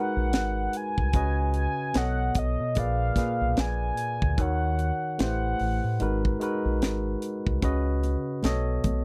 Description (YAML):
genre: R&B, neo-soul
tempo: 74 BPM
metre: 4/4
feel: swing 58% on 16ths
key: G# minor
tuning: A4 = 441 Hz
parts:
  - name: mellow horn-like synth lead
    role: melody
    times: 0.0-6.4 s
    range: D#5 to G#5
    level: -33 LUFS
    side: equal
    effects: chorus, slapback echo
  - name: barky tine electric piano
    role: accompaniment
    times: 0.0-9.0 s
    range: A#2 to E#5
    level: -32 LUFS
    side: equal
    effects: overdrive
  - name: deep dub fingered electric bass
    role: bass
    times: 0.2-9.0 s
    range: G#1 to B2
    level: -30 LUFS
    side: equal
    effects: none
  - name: tight funk drum kit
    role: drums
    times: 0.3-9.0 s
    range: hi-hat, kick drum, snare drum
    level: -30 LUFS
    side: equal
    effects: none
  - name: congas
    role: percussion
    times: 7.6-9.0 s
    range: none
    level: -37 LUFS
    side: equal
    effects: none
room: little or no reverb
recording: dry, close 1970s-style studio recording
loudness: -27 LUFS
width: mono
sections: 0.0-9.0 A section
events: none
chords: 0.0 G#m7; 1.1 C#7sus4; 1.9 B9; 2.8 A#7b9; 4.4 D#m7; 5.2 Am7; 6.0 G#m7; 7.6 C#7sus4; 8.4 B9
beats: 0.33 | 1.14 1.95 2.76 3.57 | 4.38 5.19 6.00 6.82 | 7.62 8.44